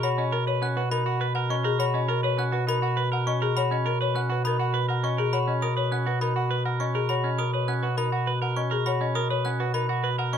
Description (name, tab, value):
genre	classical, minimalist pattern music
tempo	102 BPM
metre	3/4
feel	straight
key	B major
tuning	A4 = 440 Hz
part	folk marimba with medium hard mallets	melody	0.0-10.4 s	G#4 to F#5	-30 LUFS	left 6 dB	none
part	clean electric guitar	arpeggios	0.0-10.4 s	C#4 to B4	-30 LUFS	right 9 dB	none
part	glockenspiel with brass mallets	arpeggios	0.0-10.4 s	B5 to F#6	-31 LUFS	left 1 dB	none
part	dark bass clarinet	bass	0.0-10.4 s	B2	-27 LUFS	left 1 dB	none
room	little or no reverb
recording	close, detailed microphones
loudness	-23 LUFS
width	side -8 dB against mid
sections	0.0-10.4 A section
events	none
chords	0.0 Bmaj9